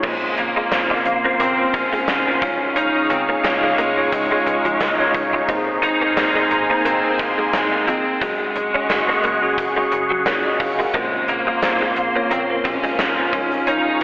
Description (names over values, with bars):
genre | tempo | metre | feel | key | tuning
1980s-style pop | 88 BPM | 4/4 | swing 55% on 16ths | unclear | A4 = 440 Hz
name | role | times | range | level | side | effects
lead guitar through a small cranked amp | melody | 0.0-14.0 s | Ab3 to Eb4 | -22 LUFS | equal | overdrive, slapback echo
bell-like tine electric piano | accompaniment | 0.0-14.0 s | Ab2 to Gb5 | -22 LUFS | equal | fast stereo tremolo, slapback echo
phased analog pad | sustained chords | 0.0-14.0 s | Db3 to Db6 | -22 LUFS | equal | phaser, chorus
direct-recorded clean electric guitar | riff | 0.0-14.0 s | F3 to Db4 | -26 LUFS | equal | none
slap-like FM bass | bass | 0.0-14.0 s | Gb1 to Db2 | -32 LUFS | equal | none
gated 80s drum kit | drums | 0.0-14.0 s | crash cymbal, hi-hat, kick drum, snare drum, tambourine | -24 LUFS | equal | none
room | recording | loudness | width
wet lush hall reverb, RT60 2.3 s | big arena sound, telephone sound | -16 LUFS | side -22 dB against mid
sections
0.0-14.0 A section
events
none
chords
0.0 Bbmadd9; 2.4 Dbadd9; 5.5 Abadd9; 8.2 Gbsus2; 10.9 Bbmadd9; 13.3 Dbadd9